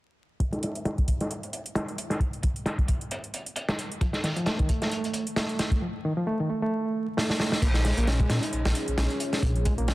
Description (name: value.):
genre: breakbeat, breaks.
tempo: 133 BPM.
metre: 4/4.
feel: swing 56% on 16ths.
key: Bb minor.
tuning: A4 = 441 Hz.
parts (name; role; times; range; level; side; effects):
crunchy breakbeat drum kit; drums; 0.4-9.9 s; crash cymbal, hi-hat, kick drum, snare drum; -27 LUFS; equal; low-pass filter on kick, low-pass filter on hats, low-pass filter on cymbals, low-pass filter on snare, low-pass filter on room.
electronic hi-hat; drums; 0.4-9.9 s; none; -38 LUFS; right 1 dB; none.
reed electric piano; riff; 4.0-9.9 s; Eb3 to Eb4; -29 LUFS; right 1 dB; fast tremolo, ping-pong delay.
dark analog pad; sustained chords; 8.6-9.9 s; Db4 to Eb5; -36 LUFS; equal; chorus, sidechain pumping.
phased detuned saw bass; bass; 7.6-9.9 s; Bb1 to Bb2; -25 LUFS; equal; phaser.
room: light reverb, small room ambience.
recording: dense, heavily limited modern master, vinyl crackle.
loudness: -25 LUFS.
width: side -18 dB against mid.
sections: 0.4-7.6 A section; 7.6-9.9 B section.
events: filter sweep on drum 0.4-7.6; drum fill 7.2-7.6.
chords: 0.4 N.C.; 7.6 Bbm11.